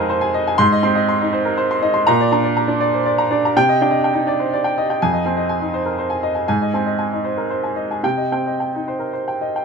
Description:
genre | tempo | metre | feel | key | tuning
neoclassical minimalist piano | 121 BPM | 3/4 | rubato | C minor | A4 = 440 Hz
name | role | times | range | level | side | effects
clear upright piano | solo | 0.0-9.6 s | F2 to C6 | -16 LUFS | right 1 dB | none
room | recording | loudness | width
light reverb | minimal, uncompressed stereo recording | -16 LUFS | side -5 dB against mid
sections
0.0-9.6 A section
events
none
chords
0.0 Fm7; 0.6 Ab; 2.1 Bb; 3.5 Cmadd9; 5.0 Fm7; 6.5 Ab; 8.0 Cm

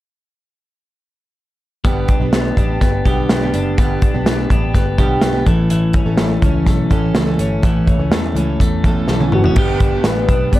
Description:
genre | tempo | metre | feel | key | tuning
jangly indie pop | 124 BPM | 4/4 | straight | unclear | A4 = 443 Hz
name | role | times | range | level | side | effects
picked steel-string acoustic guitar | accompaniment | 1.8-10.6 s | G2 to A4 | -22 LUFS | right 4 dB | none
vintage muted picked electric bass | bass | 1.8-10.6 s | F#1 to G2 | -20 LUFS | equal | none
modern studio drum kit | drums | 1.8-10.6 s | crash cymbal, hi-hat, kick drum, snare drum, toms | -16 LUFS | equal | none
twelve-string electric guitar | arpeggios | 1.9-10.6 s | E3 to A4 | -21 LUFS | left 4 dB | tape echo
warbly nostalgic lead | melody | 9.3-10.6 s | F#4 to D5 | -19 LUFS | equal | chorus
room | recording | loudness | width
light reverb | dry, gritty hardware recording | -13 LUFS | side -16 dB against mid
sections
1.8-9.6 A section; 9.6-10.6 B section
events
drum fill 9.1-9.6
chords
1.8 G; 5.5 A; 9.6 G

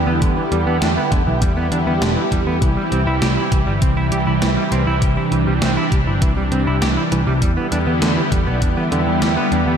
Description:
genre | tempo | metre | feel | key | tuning
synthwave | 100 BPM | 4/4 | straight | E minor | A4 = 438 Hz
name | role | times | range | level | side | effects
lush unison pad | sustained chords | 0.0-9.8 s | C3 to G4 | -20 LUFS | right 1 dB | chorus, phaser, sidechain pumping
picked electric bass | bass | 0.0-9.8 s | E1 to E2 | -20 LUFS | equal | tube saturation
semi-hollow electric guitar | arpeggios | 0.1-9.7 s | D3 to G4 | -24 LUFS | right 2 dB | analog delay
electronic kick drum | drums | 0.2-8.7 s | none | -19 LUFS | equal | none
gated 80s digital drum machine | drums | 0.2-9.6 s | hi-hat, snare drum | -25 LUFS | right 1 dB | gated reverb, gated reverb snare, overdrive
room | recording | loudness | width
moderate lush hall reverb, RT60 1.8 s, digital ambience | dreamy mix soaked in reverb | -15 LUFS | side -7 dB against mid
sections
0.0-9.8 A section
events
none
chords
0.0 Em7; 2.6 C; 7.4 Em7

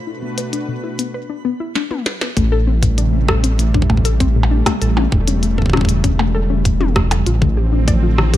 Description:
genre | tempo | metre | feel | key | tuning
IDM | 98 BPM | 4/4 | straight | A minor | A4 = 444 Hz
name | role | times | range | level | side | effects
warm analog pad | sustained chords | 0.0-8.4 s | B2 to B4 | -24 LUFS | right 1 dB | chorus
twinkling granular texture | texture | 0.0-1.1 s | B5 | -42 LUFS | right 4 dB | built-in reverb
warbly dusty pluck | arpeggios | 0.1-8.4 s | A2 to D5 | -22 LUFS | left 5 dB | chorus, digital delay
glitchy drum kit | drums | 0.4-8.4 s | hi-hat, percussion blips, rim click, snare drum, toms | -21 LUFS | equal | none
dark detuned saw bass | bass | 2.4-8.4 s | E1 to A1 | -16 LUFS | equal | tube saturation
electronic kick drum | drums | 2.4-8.4 s | none | -17 LUFS | equal | none
room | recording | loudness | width
digital ambience | none | -14 LUFS | side -13 dB against mid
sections
0.0-2.4 A section; 2.4-8.4 B section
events
drum fill 1.8-2.4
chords
0.0 Bm7; 2.4 Am7; 4.8 A7; 7.3 Dm7/A

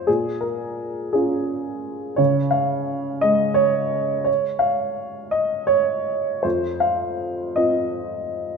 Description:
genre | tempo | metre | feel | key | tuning
neoclassical minimalist piano | 57 BPM (dotted quarters) | 6/8 | uneven beats, rubato | Db major | A4 = 441 Hz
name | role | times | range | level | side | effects
warm upright piano | solo | 0.0-8.6 s | F2 to F5 | -20 LUFS | right 1 dB | none
room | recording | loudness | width
moderate concert hall reverb, RT60 1.8 s | minimal, uncompressed stereo recording | -20 LUFS | side -5 dB against mid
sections
0.0-8.6 A section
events
none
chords
0.1 Bbm; 2.2 Db; 6.4 F5

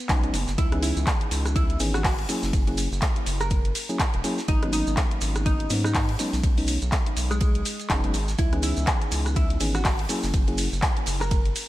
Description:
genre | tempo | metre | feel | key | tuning
deep house | 123 BPM | 4/4 | swing 58% on 16ths | C# dorian | A4 = 440 Hz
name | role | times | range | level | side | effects
hollow-body jazz guitar | melody | 0.0-11.7 s | G#3 to A#4 | -33 LUFS | right 1 dB | analog chorus, digital delay
mellow FM electric piano | stabs | 0.1-10.7 s | E3 to G#4 | -30 LUFS | left 1 dB | chorus, sidechain pumping, digital delay
round analog bass | bass | 0.1-11.5 s | E1 to G#2 | -27 LUFS | equal | tube saturation, sidechain pumping
damped 70s drum kit | drums | 0.1-11.7 s | hi-hat, ride cymbal, snare drum | -39 LUFS | right 2 dB | sidechain pumping on cymbals, high-pass filter on cymbals, sidechain pumping on hats, high-pass filter on hats, high-pass filter on snare, high-pass filter on room, gated reverb
electronic kick drum | drums | 0.1-11.4 s | none | -24 LUFS | equal | none
house drum kit | drums | 0.1-11.7 s | handclaps, hi-hat, ride cymbal, rim click | -30 LUFS | equal | gated reverb
maracas | percussion | 0.1-11.7 s | none | -36 LUFS | right 4 dB | none
room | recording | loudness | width
small room ambience | bright 1980s-style digital production | -22 LUFS | side -16 dB against mid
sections
0.0-11.7 A section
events
none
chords
0.0 B69; 0.6 C#m7; 2.3 F#7; 4.5 G#m11; 6.2 B69; 8.4 C#m7; 10.1 F#7

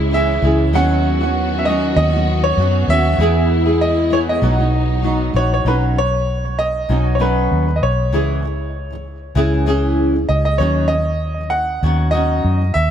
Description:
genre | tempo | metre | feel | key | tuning
acoustic pop | 97 BPM | 4/4 | swing 55% on 16ths | B major | A4 = 440 Hz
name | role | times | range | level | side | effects
bright upright piano | melody | 0.0-12.9 s | B4 to F#5 | -20 LUFS | right 1 dB | analog delay
flamenco guitar | accompaniment | 0.0-12.9 s | B2 to G#4 | -20 LUFS | equal | double-tracked left and right
warm studio string section | sustained chords | 0.0-5.7 s | D#3 to F#4 | -25 LUFS | left 1 dB | none
vintage muted fingered electric bass | bass | 0.0-12.9 s | A#1 to F#2 | -18 LUFS | equal | none
room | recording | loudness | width
light reverb, studio ambience | none | -14 LUFS | side -9 dB against mid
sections
0.0-5.7 A section; 5.7-12.9 B section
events
none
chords
0.0 C#m; 0.7 Badd9/D#; 3.2 E; 4.4 B; 5.7 Badd9; 8.1 C#m; 10.6 Badd9/D#

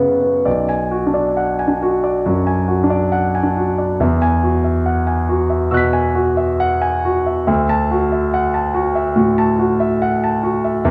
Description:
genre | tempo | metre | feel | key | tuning
classical, impressionist solo piano | 62-75 BPM | 4/4 | rubato | B minor | A4 = 439 Hz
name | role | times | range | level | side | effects
warm grand piano | solo | 0.0-10.9 s | B1 to C#7 | -17 LUFS | equal | none
room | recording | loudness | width
moderate recital hall reverb, RT60 1.3 s | dark, warm production | -17 LUFS | mono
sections
0.5-10.9 A section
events
none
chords
0.5 Bm6; 4.0 Eadd9; 7.5 Dadd9

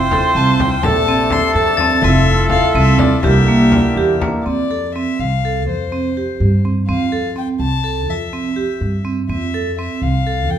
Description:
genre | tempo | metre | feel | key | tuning
contemporary instrumental, chamber music in an uneven meter | 249 BPM (eighths) | 5/8 | straight | F major | A4 = 440 Hz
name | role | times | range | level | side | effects
warm violin | melody | 0.0-10.6 s | C5 to C6 | -22 LUFS | left 8 dB | none
rich viola | second line | 0.0-4.2 s | G4 to C5 | -19 LUFS | right 2 dB | none
hand-pumped harmonium | sustained chords | 0.0-4.4 s | C3 to F4 | -22 LUFS | left 3 dB | none
upright bass | bass | 0.0-10.6 s | F1 to G2 | -18 LUFS | equal | none
vibraphone with medium hard mallets | arpeggios | 0.1-10.6 s | Bb3 to A4 | -19 LUFS | right 4 dB | none
frame drum | percussion | 0.1-4.4 s | none | -24 LUFS | left 4 dB | none
glockenspiel with hard plastic mallets | texture | 1.8-2.2 s | A6 | -22 LUFS | left 6 dB | none
room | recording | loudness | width
wet recital hall reverb, RT60 1.6 s | minimal, uncompressed stereo recording | -13 LUFS | side -9 dB against mid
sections
0.0-4.5 A section; 4.5-10.6 B section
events
none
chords
0.0 Fmaj7; 0.8 Bbmaj9; 2.0 Fmaj7; 3.2 C9; 4.5 F; 5.7 Csus4/F; 6.9 F; 8.1 Csus4/F; 9.3 Fmaj7

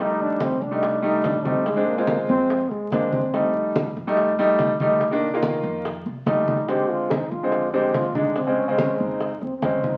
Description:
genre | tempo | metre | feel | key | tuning
Afro-Cuban jazz | 143 BPM | 4/4 | straight | unclear | A4 = 440 Hz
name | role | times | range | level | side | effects
mellow trombone | melody | 0.0-3.5, 6.5-10.0 s | Ab3 to G4 | -28 LUFS | equal | none
clear baby grand piano | accompaniment | 0.0-9.9 s | Db3 to F4 | -24 LUFS | equal | none
upright bass | bass | 0.0-10.0 s | Bb1 to F2 | -37 LUFS | equal | none
bongos | percussion | 0.2-10.0 s | none | -34 LUFS | equal | none
congas | percussion | 0.2-10.0 s | none | -32 LUFS | equal | none
room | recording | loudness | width
wet studio reverb, RT60 0.9 s | very old 78 rpm record, vinyl crackle | -22 LUFS | mono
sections
0.0-10.0 A section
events
none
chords
0.0 F7; 1.7 Bb7; 3.3 F7; 5.0 Cm7; 5.9 F7; 6.7 Bb7; 8.4 Bbm7

